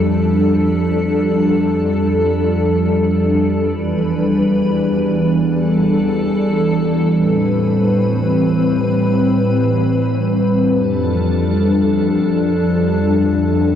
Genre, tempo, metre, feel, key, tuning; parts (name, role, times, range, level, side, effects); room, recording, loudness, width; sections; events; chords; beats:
hip hop; free time; A4 = 440 Hz
glassy FM pad; solo; 0.0-13.8 s; E2 to B4; -13 LUFS; equal; ensemble chorus, built-in reverb, analog delay
light reverb; dry, gritty hardware recording; -14 LUFS; side -9 dB against mid
0.0-3.6 A section; 3.6-13.8 B section
0.0 F69; 3.6 Em7; 7.1 Am9; 10.6 F69
free time